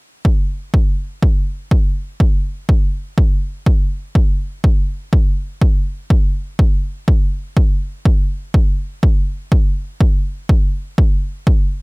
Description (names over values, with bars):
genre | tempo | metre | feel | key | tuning
techno | 123 BPM | 4/4 | swing 53% on 16ths | none | none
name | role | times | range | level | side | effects
electronic kick drum | drums | 0.2-11.6 s | none | -13 LUFS | equal | overdrive
room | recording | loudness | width
little or no reverb | none | -14 LUFS | side -39 dB against mid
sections
0.2-11.8 A section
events
none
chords
none